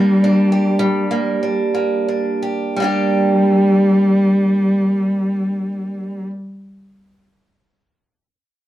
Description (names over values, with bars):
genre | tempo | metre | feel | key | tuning
celtic folk, Celtic slow air | 42-56 BPM | 3/4 | rubato | G minor | A4 = 441 Hz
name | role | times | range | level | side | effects
dark cello | melody | 0.0-6.2 s | G3 | -16 LUFS | equal | none
picked old ladder-braced acoustic guitar | accompaniment | 0.0-6.3 s | G3 to G4 | -19 LUFS | right 2 dB | none
room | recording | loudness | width
moderate booth ambience, RT60 0.2 s | dry, close 1970s-style studio recording | -14 LUFS | side -13 dB against mid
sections
0.0-2.8 A section; 2.8-6.8 B section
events
slowing down 0.0-2.8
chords
0.0 Gm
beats
0.23 1.41 | 2.77 4.15 5.44